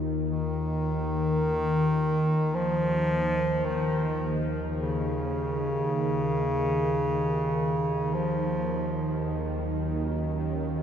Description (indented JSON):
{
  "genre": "dark ambient drone",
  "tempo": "free time",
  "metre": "none",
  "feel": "none",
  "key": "Eb minor",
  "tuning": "A4 = 440 Hz",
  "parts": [
    { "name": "sweeping resonant pad", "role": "sustained chords", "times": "0.0-10.8 s", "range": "Eb2 to F4", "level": "-38 LUFS", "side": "equal", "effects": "chorus" },
    { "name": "bowed-like drone", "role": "drone", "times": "0.0-10.8 s", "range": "Eb2 to Eb3", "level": "-29 LUFS", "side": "equal", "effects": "built-in reverb" },
    { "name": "warm bass clarinet", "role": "melody", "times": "0.3-9.2 s", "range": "Db3 to F3", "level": "-28 LUFS", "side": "equal", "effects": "tape echo" }
  ],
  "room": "wet huge ambient reverb, RT60 7.5 s",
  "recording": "none",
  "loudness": "-25 LUFS",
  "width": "side -8 dB against mid",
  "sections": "0.0-10.8 A section",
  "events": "fade-in on analog synth pad 0.0-10.8; filter sweep on synth drone 0.0-10.8",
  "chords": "0.0 Eb5; 9.2 Gb/Eb"
}